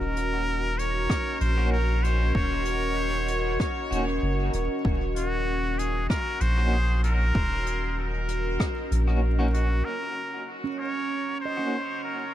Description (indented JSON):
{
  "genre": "ambient dub",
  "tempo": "96 BPM",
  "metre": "4/4",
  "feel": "swing 53% on 16ths",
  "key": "Eb dorian",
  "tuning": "A4 = 441 Hz",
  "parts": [
    { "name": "trumpet with straight mute", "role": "melody", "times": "0.0-12.3 s", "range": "Gb4 to Db5", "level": "-30 LUFS", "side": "equal", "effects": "tape echo" },
    { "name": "deep dark ambient pad", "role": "sustained chords", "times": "0.0-12.3 s", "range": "Db4 to Eb5", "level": "-32 LUFS", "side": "left 1 dB", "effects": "chorus, built-in reverb" },
    { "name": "soft dub sub bass", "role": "bass", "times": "0.0-9.8 s", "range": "Eb1 to Bb1", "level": "-26 LUFS", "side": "equal", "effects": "none" },
    { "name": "jazz brush drum kit", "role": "drums", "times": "0.2-9.7 s", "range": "hi-hat, rim click", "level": "-38 LUFS", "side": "left 1 dB", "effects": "dub echo" },
    { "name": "electronic kick drum", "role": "drums", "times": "1.1-8.7 s", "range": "none", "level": "-28 LUFS", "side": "equal", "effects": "overdrive" },
    { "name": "clean electric guitar", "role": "stabs", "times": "1.6-11.8 s", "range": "Bb3 to Gb4", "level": "-36 LUFS", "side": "equal", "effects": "tremolo, dub echo" },
    { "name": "handpan", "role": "arpeggios", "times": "10.6-12.3 s", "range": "Db4 to Eb5", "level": "-31 LUFS", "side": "right 7 dB", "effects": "low-pass filter, tape echo" }
  ],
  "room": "light reverb, small room ambience",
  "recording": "vinyl crackle",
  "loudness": "-24 LUFS",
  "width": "side -12 dB against mid",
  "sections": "0.0-9.8 A section; 9.8-12.3 B section",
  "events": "none",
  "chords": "0.0 Ebm7",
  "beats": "0.47 1.10 1.73 | 2.35 2.98 3.60 4.22 | 4.85 5.47 6.10 6.72 | 7.35 7.97 8.60 9.22 | 9.85 10.47 11.10 11.72"
}